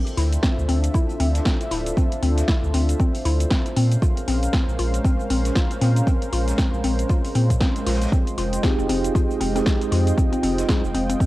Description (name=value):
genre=deep house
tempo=117 BPM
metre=4/4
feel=swing 58% on 16ths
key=unclear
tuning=A4 = 440 Hz
part: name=warm analog pad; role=sustained chords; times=0.0-11.3 s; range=Ab3 to G5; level=-28 LUFS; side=equal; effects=chorus, sidechain pumping, cassette tape
part: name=deep house drum kit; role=drums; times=0.1-11.3 s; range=cabasa, hi-hat, snare drum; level=-30 LUFS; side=equal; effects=overdrive, cassette tape
part: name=mallet-like synth pluck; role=arpeggios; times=0.2-11.3 s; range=C4 to F4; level=-27 LUFS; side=left 2 dB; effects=chorus, sidechain pumping, cassette tape, analog delay
part: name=warm sub bass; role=bass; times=0.2-11.1 s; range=D1 to Bb2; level=-21 LUFS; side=equal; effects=sidechain pumping
part: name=vintage drum kit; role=drums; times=0.2-11.1 s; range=hi-hat, snare drum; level=-41 LUFS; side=equal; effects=none
part: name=electronic kick drum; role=drums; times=0.4-11.3 s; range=none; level=-21 LUFS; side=equal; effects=overdrive, cassette tape
part: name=mellow tine electric piano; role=stabs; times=8.6-10.8 s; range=G3 to Ab4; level=-25 LUFS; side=right 1 dB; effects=medium stereo tremolo, sidechain pumping, cassette tape, tape echo
room=little or no reverb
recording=home recording on cassette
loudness=-18 LUFS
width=side -17 dB against mid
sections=0.0-11.3 A section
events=none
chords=0.0 Dm9; 3.8 Bbm9; 8.1 Fm9